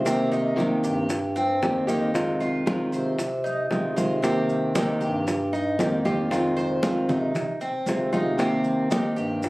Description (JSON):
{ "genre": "latin, Cuban son and guajira", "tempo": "115 BPM", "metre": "4/4", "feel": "straight", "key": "C minor", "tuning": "A4 = 440 Hz", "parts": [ { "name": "nylon-string guitar", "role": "accompaniment", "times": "0.0-9.5 s", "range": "C3 to G4", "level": "-24 LUFS", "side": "equal", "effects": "none" }, { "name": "Cuban tres", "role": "arpeggios", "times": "0.0-9.5 s", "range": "C4 to C5", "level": "-28 LUFS", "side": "equal", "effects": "none" }, { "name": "mellow bass clarinet", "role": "bass", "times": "0.0-9.5 s", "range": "F2 to C3", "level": "-29 LUFS", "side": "right 1 dB", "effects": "none" }, { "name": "bongos", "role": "percussion", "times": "0.1-9.5 s", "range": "none", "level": "-31 LUFS", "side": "left 1 dB", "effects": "none" }, { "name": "congas", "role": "percussion", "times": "0.1-9.5 s", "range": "none", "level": "-31 LUFS", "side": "equal", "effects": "none" }, { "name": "maracas", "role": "percussion", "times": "0.1-9.5 s", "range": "none", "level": "-42 LUFS", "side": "right 1 dB", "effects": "none" } ], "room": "light reverb", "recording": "recorded on a phone in the room, club reverb, compression", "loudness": "-22 LUFS", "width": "side -21 dB against mid", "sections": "0.0-4.2 A section; 4.2-9.5 B section", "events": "none", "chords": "0.1 Cm7; 2.1 Fm7; 4.2 Cm7; 6.3 Fm7; 8.4 Cm7" }